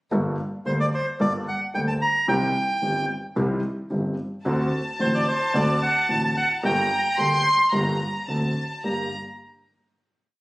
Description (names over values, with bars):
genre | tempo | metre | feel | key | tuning
tango | 110 BPM | 4/4 | rubato | G harmonic minor | A4 = 444 Hz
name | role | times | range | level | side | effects
warm concert grand piano | accompaniment | 0.1-9.1 s | G1 to A4 | -26 LUFS | equal | none
clear double bass | bass | 0.1-9.1 s | G1 to D2 | -31 LUFS | equal | none
bandoneon | melody | 0.7-7.4 s | C5 to Bb5 | -23 LUFS | right 1 dB | plate reverb
warm chamber violin section | second line | 4.5-9.1 s | A5 to C6 | -25 LUFS | equal | none
room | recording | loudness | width
wet large studio reverb, RT60 1.0 s | recorded on a phone in the room, studio reverb, compression | -21 LUFS | side -20 dB against mid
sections
0.1-8.8 A section; 8.8-10.4 final chord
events
none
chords
0.1 Gmadd9; 2.3 Cm; 4.5 D7; 6.6 Gm; 8.3 D7; 8.8 Gm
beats
| 0.12 0.66 1.20 1.75 | 2.29 2.83 3.37 3.91 | 4.45 5.00 5.54 6.09 | 6.63 7.18 7.73 8.28 | 8.84